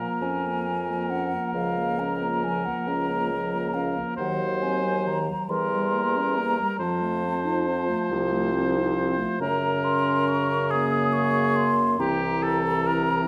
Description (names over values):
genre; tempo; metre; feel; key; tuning
classical, slow romantic movement for wind quintet; 46 BPM (dotted quarters); 6/8; rubato; Bb minor; A4 = 443 Hz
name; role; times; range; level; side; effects
mellow hollow concert flute; melody; 0.0-13.3 s; F5 to Eb6; -31 LUFS; equal; none
clear oboe; second line; 0.0-13.3 s; G4 to C5; -31 LUFS; equal; none
dark clarinet; accompaniment; 0.0-13.3 s; Eb3 to Eb4; -33 LUFS; equal; none
mellow French horn; accompaniment; 0.0-13.3 s; Db3 to G3; -33 LUFS; equal; none
warm bassoon; bass; 0.2-13.3 s; C2 to Gb2; -31 LUFS; equal; none
room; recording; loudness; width
wet recital hall reverb, RT60 1.4 s; none; -25 LUFS; mono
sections
0.0-13.3 A section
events
none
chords
0.0 Bbm; 1.5 Bbm/Db; 4.2 Cdim/Eb; 5.5 Edim7; 6.8 F7; 9.4 Gb; 12.0 C7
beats
0.22 | 1.54 2.87 | 4.18 5.50 | 6.79 8.10 | 9.40 10.71 | 11.99